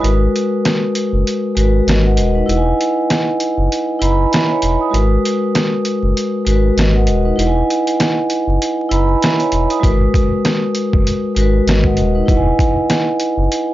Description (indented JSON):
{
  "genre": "hip hop, boom-bap hip-hop",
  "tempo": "98 BPM",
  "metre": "4/4",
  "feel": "swing 57% on 16ths",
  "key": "G# minor",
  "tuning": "A4 = 440 Hz",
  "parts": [
    { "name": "vibraphone with medium mallets", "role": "accompaniment", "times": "0.0-13.7 s", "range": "G#3 to D#6", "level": "-16 LUFS", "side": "equal", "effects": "high-pass filter, low-pass filter" },
    { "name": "sub bass with octave", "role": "bass", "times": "0.0-13.5 s", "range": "D#1 to G#1", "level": "-15 LUFS", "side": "equal", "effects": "none" },
    { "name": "trip hop sampler-style drum kit", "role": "drums", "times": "0.0-13.7 s", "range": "hi-hat, kick drum, rim click, snare drum", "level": "-18 LUFS", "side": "equal", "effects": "overdrive" }
  ],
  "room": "little or no reverb",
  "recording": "dry, gritty hardware recording, vinyl crackle, nothing above 7.5 kHz",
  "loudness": "-13 LUFS",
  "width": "side -15 dB against mid",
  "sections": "0.0-13.7 A section",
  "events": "break 0.0-9.8",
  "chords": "0.0 G#m9; 2.5 Emaj7; 4.9 G#m9; 7.4 Emaj7; 9.8 G#m9; 12.3 Emaj7",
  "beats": "| 0.04 0.65 1.26 1.87 | 2.49 3.10 3.71 4.32 | 4.93 5.55 6.16 6.77 | 7.38 8.00 8.61 9.22 | 9.83 10.45 11.06 11.67 | 12.28 12.89 13.51"
}